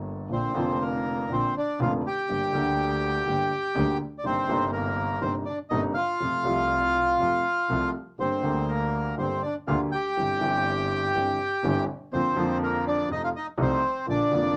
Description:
tango; 122 BPM; 4/4; rubato; Bb major; A4 = 441 Hz
warm upright piano; accompaniment; 0.0-14.6 s; F1 to A4; -31 LUFS; equal
clear double bass; bass; 0.0-14.6 s; F1 to F2; -35 LUFS; equal
bandoneon; melody; 0.3-14.6 s; Bb3 to G5; -28 LUFS; equal
moderate small room reverb, RT60 0.5 s; -26 LUFS; mono
0.3-14.6 A section
0.3 Bbadd9; 2.3 Gm; 4.2 Cm7/G; 6.2 F; 8.2 Gm; 10.2 C/G; 12.1 Bb/F; 13.1 F7

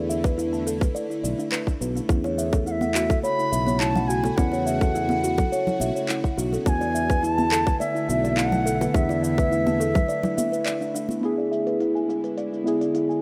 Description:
organic downtempo; 105 BPM; 4/4; straight; E mixolydian; A4 = 440 Hz
bowed-like drone; sustained chords; 0.0-13.2 s; C#3 to F#4; -34 LUFS; equal; built-in reverb, phaser, sidechain pumping
buzzing kalimba; arpeggios; 0.0-13.2 s; C#4 to A5; -30 LUFS; equal; low-pass filter, delay
sustaining fretless electric bass; bass; 0.0-10.0 s; B1 to E2; -30 LUFS; equal; subtle chorus, sidechain pumping
organic electronic drum kit; drums; 0.1-13.2 s; handclaps, hi-hat, shaker; -33 LUFS; equal; overdrive, low-pass filter on perc, low-pass filter on snare, low-pass filter on hats, low-pass filter on room
electronic kick drum; drums; 0.2-10.1 s; -25 LUFS; equal; overdrive
bongos and congas; percussion; 2.2-11.2 s; -32 LUFS; equal
bright reedy bansuri; melody; 2.7-10.9 s; E5 to B5; -29 LUFS; equal; delay
muted felt-like synth keys; accompaniment; 11.2-13.2 s; B3 to G#4; -26 LUFS; equal; chorus, sidechain pumping
moderate lush hall reverb, RT60 2.4 s; rough home demo mix; -23 LUFS; mono
0.0-11.2 A section; 11.2-13.2 B section
break 10.1-11.2
0.0 E7sus4; 2.1 A6; 6.7 E7sus4; 11.2 E7

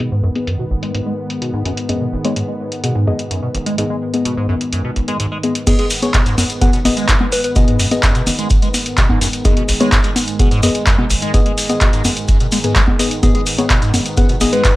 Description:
acid house; 127 BPM; 4/4; straight; G# minor pentatonic; A4 = 439 Hz
warm analog pad; sustained chords; 0.0-14.8 s; G#2 to B3; -25 LUFS; right 1 dB; chorus, tremolo, sidechain pumping
liquid acid bass; riff; 0.0-14.7 s; G#1 to G#3; -21 LUFS; equal; phaser, overdrive, wide subtle chorus, tape echo
deep mellow chord stab; stabs; 0.0-14.5 s; B3 to G#5; -21 LUFS; left 3 dB; chorus, tape echo
electro analog drum machine; drums; 0.0-14.7 s; congas, crash cymbal, handclaps, hi-hat; -19 LUFS; equal; low-pass filter on hats, low-pass filter on snare, low-pass filter on cymbals, low-pass filter on perc, low-pass filter on room
soft struck synth lead; melody; 5.7-7.5, 13.2-14.8 s; G#4 to B4; -22 LUFS; left 1 dB; chorus, tape echo
electronic kick drum; drums; 5.7-14.7 s; -15 LUFS; equal
maracas; percussion; 5.7-14.7 s; -26 LUFS; left 2 dB
light reverb; dry, gritty hardware recording; -13 LUFS; side -17 dB against mid
0.0-5.7 A section; 5.7-14.8 B section
filter sweep on acid bass 0.0-5.7; filter sweep on synth stab 0.0-5.7; drop 5.7-14.8
0.0 G#m

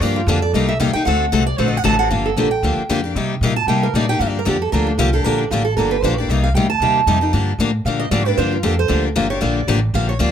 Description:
acoustic string swing (jazz manouche); 230 BPM; 4/4; swing 56% on 8ths; G minor; A4 = 436 Hz
picked steel-string acoustic guitar; second line; 0.0-10.3 s; D4 to A5; -20 LUFS; right 6 dB
picked steel-string acoustic guitar; accompaniment; 0.0-10.3 s; C3 to A4; -19 LUFS; left 4 dB
upright bass; bass; 0.0-10.3 s; G1 to C3; -20 LUFS; equal
light reverb; close, detailed microphones; -15 LUFS; side -9 dB against mid
0.0-2.1 A section; 2.1-10.3 A section
steel-string acoustic guitar solo 0.0-10.3
0.0 Gm7; 0.5 Cm7; 1.1 D7; 2.1 Gm7; 3.2 Cm7; 4.2 Gm7; 6.3 Cm7; 7.3 Gm7

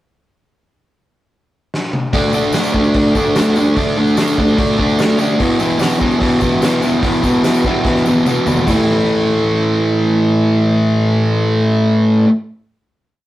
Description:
garage rock duo or trio; 147 BPM; 4/4; straight; A4 = 439 Hz
raw garage drum kit; drums; 1.7-8.8 s; hi-hat, kick drum, snare drum, toms; -19 LUFS; equal
fuzz guitar; riff; 2.1-12.3 s; E2 to D4; -12 LUFS; equal; distortion
tambourine; percussion; 2.1-8.9 s; -34 LUFS; left 4 dB
moderate studio reverb, RT60 0.5 s; rough rehearsal-room recording; -12 LUFS; side -14 dB against mid
0.5-2.1 pickup bar; 2.1-8.7 pre-chorus; 8.7-11.9 final chord
drum fill 1.7-2.1, 7.9-8.7
0.5 N.C.; 2.1 D5; 5.4 E5; 8.7 A5

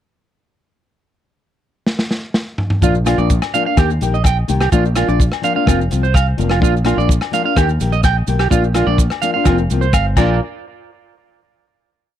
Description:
highlife guitar band; 126 BPM; 4/4; straight; Bb major; A4 = 440 Hz
crunchy breakbeat drum kit; drums; 1.9-10.3 s; crash cymbal, hi-hat, kick drum, rim click, snare drum, toms; -17 LUFS; equal
nylon-string guitar; accompaniment; 2.8-10.4 s; Eb3 to G4; -20 LUFS; left 10 dB
electric guitar at the edge of break-up; arpeggios; 2.8-10.4 s; F4 to G5; -19 LUFS; right 9 dB; tape echo
fingered electric bass; bass; 2.8-10.4 s; F1 to Eb2; -17 LUFS; equal
maracas; percussion; 2.8-10.4 s; -30 LUFS; right 22 dB
agogo bells; percussion; 3.1-10.3 s; -26 LUFS; left 25 dB
little or no reverb; dry, close 1970s-style studio recording; -13 LUFS; side -11 dB against mid
0.9-2.8 pickup bar; 2.8-10.4 groove; 10.4-12.2 final hit
drum fill 1.9-2.8
0.9 N.C.; 2.8 Bb; 3.8 Eb; 4.7 Bb; 5.7 Fsus4; 6.6 Bb; 7.6 Eb; 8.5 Bb; 9.5 Fsus4; 10.2 Bb; 10.4 N.C.

